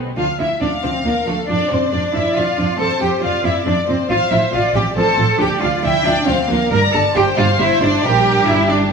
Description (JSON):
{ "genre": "quick classical-period movement for string orchestra", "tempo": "137 BPM", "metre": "3/4", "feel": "rubato", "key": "D minor", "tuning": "A4 = 444 Hz", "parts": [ { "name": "warm symphonic viola section", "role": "accompaniment", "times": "0.0-8.9 s", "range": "F3 to D4", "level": "-23 LUFS", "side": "right 1 dB", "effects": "none" }, { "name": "rich symphonic cello section", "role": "bass", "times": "0.0-8.9 s", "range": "B2 to Bb4", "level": "-19 LUFS", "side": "right 2 dB", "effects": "none" }, { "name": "warm symphonic double bass section", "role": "bass", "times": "0.0-8.9 s", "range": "G1 to F2", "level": "-22 LUFS", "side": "right 3 dB", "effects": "none" }, { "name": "warm studio violin section", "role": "melody", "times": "0.2-8.8 s", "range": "A4 to Bb5", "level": "-21 LUFS", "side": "left 3 dB", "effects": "none" }, { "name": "warm symphonic violin section", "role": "second line", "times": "0.6-8.9 s", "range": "G4 to G5", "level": "-22 LUFS", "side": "left 2 dB", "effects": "none" } ], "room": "moderate scoring stage reverb, RT60 1.7 s", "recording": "small room ambience", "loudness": "-14 LUFS", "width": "side -5 dB against mid", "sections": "0.2-8.9 A section", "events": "none", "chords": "0.2 Dm; 1.5 Dm/F; 2.8 F5; 4.1 F/A; 5.4 Dm; 6.7 G5; 8.0 Gm/Bb" }